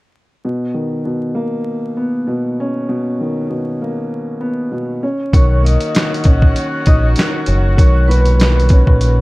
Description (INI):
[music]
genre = hip hop, boom-bap hip-hop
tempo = 98 BPM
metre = 4/4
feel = swing 58% on 16ths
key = B major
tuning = A4 = 440 Hz
[part]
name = dark upright piano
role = accompaniment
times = 0.4-9.2 s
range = A#2 to C#5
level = -19 LUFS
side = equal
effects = high-pass filter, low-pass filter
[part]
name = vibraphone with medium mallets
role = melody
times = 5.3-9.2 s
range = B4 to D#6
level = -22 LUFS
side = equal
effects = high-pass filter, low-pass filter
[part]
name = warm horn section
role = stabs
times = 5.3-9.2 s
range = D#3 to F#4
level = -24 LUFS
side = left 1 dB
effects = high-pass filter, low-pass filter, tape echo
[part]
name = deep dub fingered electric bass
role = bass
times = 5.3-9.2 s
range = F#1 to B1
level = -13 LUFS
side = equal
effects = none
[part]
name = dusty soul sampler-style drum kit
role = drums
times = 5.3-9.2 s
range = handclaps, hi-hat, kick drum, snare drum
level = -12 LUFS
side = equal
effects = none
[sound]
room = light reverb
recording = dark, warm production, vinyl crackle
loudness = -13 LUFS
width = side -21 dB against mid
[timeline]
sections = 0.4-5.3 A section; 5.3-9.2 B section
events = none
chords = 0.4 Bmaj9; 5.0 N.C.; 5.3 Bmaj9